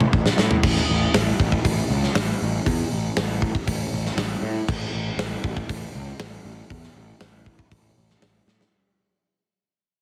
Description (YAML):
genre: hard rock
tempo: 119 BPM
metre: 4/4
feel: straight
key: A major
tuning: A4 = 440 Hz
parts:
  - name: fuzz picked electric bass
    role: bass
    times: 0.0-8.6 s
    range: A1 to A2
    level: -27 LUFS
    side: equal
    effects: overdrive
  - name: big rock drum kit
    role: drums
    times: 0.0-8.7 s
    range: crash cymbal, hi-hat, kick drum, snare drum, toms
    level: -25 LUFS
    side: equal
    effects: none
room: light reverb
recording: heavily compressed radio sound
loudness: -23 LUFS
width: mono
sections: 0.6-8.7 A section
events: drum fill 0.0-0.6, 8.5; fade-out 0.6-8.7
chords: none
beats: 0.13 | 0.64 1.14 1.65 2.15 | 2.66 3.17 3.67 4.18 | 4.68 5.19 5.70 6.20 | 6.71 7.22 7.72 8.23